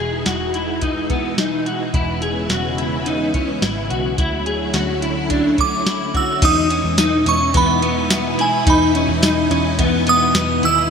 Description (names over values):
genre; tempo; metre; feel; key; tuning
dream pop; 107 BPM; 4/4; straight; E major; A4 = 440 Hz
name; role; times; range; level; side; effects
string machine, violins; sustained chords; 0.0-10.9 s; B2 to E4; -23 LUFS; equal; ensemble chorus, shimmer reverb
clean electric guitar; arpeggios; 0.0-10.9 s; B3 to G#4; -20 LUFS; left 2 dB; ensemble chorus, shimmer reverb, digital delay
vintage muted picked electric bass; bass; 0.0-10.9 s; E1 to E2; -25 LUFS; equal; none
soft vintage rhythm box; drums; 0.3-10.8 s; crash cymbal, hi-hat, kick drum, snare drum, tambourine; -20 LUFS; equal; gated reverb
glassy synth bell; melody; 5.6-10.9 s; G#5 to E6; -19 LUFS; right 4 dB; chorus, shimmer reverb
room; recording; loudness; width
moderate plate reverb, RT60 1.6 s; bright 1980s-style digital production; -15 LUFS; side -6 dB against mid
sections
0.0-6.4 A section; 6.4-10.9 B section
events
none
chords
0.0 Emaj7; 1.9 C#m7/E; 4.2 Dmaj9; 6.4 Emaj7